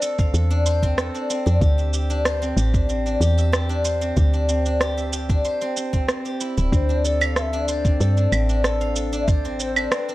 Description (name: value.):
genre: organic downtempo.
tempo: 94 BPM.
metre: 4/4.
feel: straight.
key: D minor.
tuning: A4 = 439 Hz.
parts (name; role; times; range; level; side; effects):
steel-string zither; arpeggios; 0.0-10.1 s; C4 to F5; -25 LUFS; left 1 dB; analog delay.
electronic shaker, rim click and claves; drums; 0.0-10.1 s; none; -26 LUFS; right 2 dB; studio reverb.
bronze singing bowl; texture; 0.0-10.1 s; D4 to D5; -36 LUFS; left 4 dB; none.
electronic kick drum; drums; 0.2-9.4 s; none; -20 LUFS; equal; studio reverb.
woody FM bass; bass; 0.3-9.9 s; D1 to G2; -21 LUFS; equal; tube saturation, sidechain pumping.
mellow hollow low ney; melody; 6.7-10.1 s; B4 to F5; -30 LUFS; left 1 dB; vintage 12-bit sampler grit, tape echo.
room: studio ambience.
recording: dry, gritty hardware recording.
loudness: -18 LUFS.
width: side -17 dB against mid.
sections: 0.0-10.1 A section.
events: none.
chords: 0.0 Dm7; 1.6 Cadd9; 6.7 Dm7.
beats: 0.34 0.98 | 1.62 2.26 2.90 3.54 | 4.17 4.81 5.45 6.09 | 6.73 7.37 8.00 8.64 | 9.28 9.92.